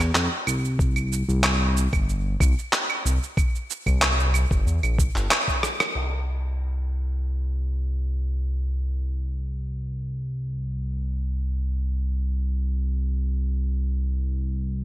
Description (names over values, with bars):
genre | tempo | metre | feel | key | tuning
organic downtempo | 93 BPM | 4/4 | straight | unclear | A4 = 438 Hz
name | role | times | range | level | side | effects
smooth synth bass | bass | 0.0-14.8 s | G1 to F2 | -24 LUFS | equal | none
dusty soul sampler-style drum kit | drums | 0.0-6.1 s | cabasa, claves, crash cymbal, handclaps, rim click | -24 LUFS | right 1 dB | low-pass filter on perc, low-pass filter on snare, low-pass filter on cymbals, gated reverb
electronic kick drum | drums | 0.8-5.6 s | none | -23 LUFS | equal | none
room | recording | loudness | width
light reverb, digital ambience | bright 1980s-style digital production | -22 LUFS | side -15 dB against mid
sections
0.0-6.0 A section; 6.0-14.8 B section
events
drum fill 5.6-6.0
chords
none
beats
0.15 | 0.79 1.44 2.08 2.73 | 3.37 4.02 4.66 5.31 | 5.95 6.60 7.24 7.89 | 8.53 9.18 9.82 10.47 | 11.11 11.76 12.40 13.05 | 13.70 14.34